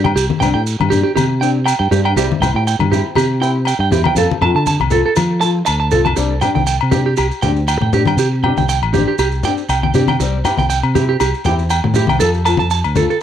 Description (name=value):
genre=highlife guitar band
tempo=120 BPM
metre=4/4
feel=swing 54% on 16ths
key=C major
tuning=A4 = 440 Hz
part: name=flamenco guitar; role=accompaniment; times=0.0-13.1 s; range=F3 to A4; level=-21 LUFS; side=left 8 dB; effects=cassette tape
part: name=clean electric guitar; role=arpeggios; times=0.0-13.2 s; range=G4 to A5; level=-18 LUFS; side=right 7 dB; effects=cassette tape, analog delay
part: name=fingered electric bass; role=bass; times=0.0-13.1 s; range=A1 to F3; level=-17 LUFS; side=equal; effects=none
part: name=congas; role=percussion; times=0.0-13.1 s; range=none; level=-20 LUFS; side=left 5 dB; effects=none
part: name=agogo bells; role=percussion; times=0.1-13.0 s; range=none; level=-23 LUFS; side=left 12 dB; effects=none
part: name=maracas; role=percussion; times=0.2-13.2 s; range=none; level=-28 LUFS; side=right 10 dB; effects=none
room=light reverb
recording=home recording on cassette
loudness=-13 LUFS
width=side -9 dB against mid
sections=0.0-6.2 A section; 6.2-13.2 B section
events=none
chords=0.0 Csus2; 2.2 C; 4.2 F; 6.2 Csus2; 10.2 C; 12.2 F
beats=| 0.17 0.67 1.17 1.67 | 2.17 2.67 3.17 3.67 | 4.17 4.67 5.17 5.67 | 6.17 6.67 7.18 7.68 | 8.18 8.68 9.19 9.69 | 10.19 10.70 11.20 11.70 | 12.21 12.71